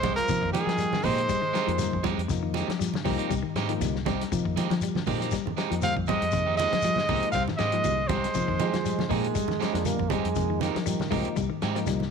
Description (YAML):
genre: afrobeat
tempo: 119 BPM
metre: 4/4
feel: swing 53% on 16ths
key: F minor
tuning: A4 = 442 Hz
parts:
  - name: clear trumpet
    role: melody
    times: 0.0-2.0, 5.8-9.1 s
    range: Ab4 to F5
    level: -27 LUFS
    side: right 1 dB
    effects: none
  - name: growling tenor saxophone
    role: second line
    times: 0.0-2.0, 5.8-9.1 s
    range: Eb3 to C4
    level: -35 LUFS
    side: right 14 dB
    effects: none
  - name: semi-hollow electric guitar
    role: arpeggios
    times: 0.0-12.1 s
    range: C3 to Ab3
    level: -33 LUFS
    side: left 13 dB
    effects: none
  - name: electric guitar at the edge of break-up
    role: stabs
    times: 0.0-11.8 s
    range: Ab3 to G4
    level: -34 LUFS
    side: right 13 dB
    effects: spring reverb
  - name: fingered electric bass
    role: bass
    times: 0.0-12.1 s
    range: C2 to F3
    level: -31 LUFS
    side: equal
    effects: tube saturation
  - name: warm soul drum kit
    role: drums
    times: 0.0-12.1 s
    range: hi-hat, kick drum, snare drum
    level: -34 LUFS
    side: left 6 dB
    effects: none
  - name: congas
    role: percussion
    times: 0.0-12.1 s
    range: none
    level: -34 LUFS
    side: right 10 dB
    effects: none
  - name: shekere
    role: percussion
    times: 0.0-12.0 s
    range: none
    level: -38 LUFS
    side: left 5 dB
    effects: none
  - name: bell-like tine electric piano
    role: accompaniment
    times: 0.3-12.0 s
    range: F3 to Eb4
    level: -36 LUFS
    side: left 13 dB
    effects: none
  - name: warm bass trombone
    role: second line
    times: 8.6-11.6 s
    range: Eb3 to Bb3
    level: -31 LUFS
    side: right 12 dB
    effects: none
room: light reverb, small room ambience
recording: 1960s-style stereo with parts hard left and right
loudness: -24 LUFS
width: side -6 dB against mid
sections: 0.0-12.1 A section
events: none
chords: 0.0 Fm9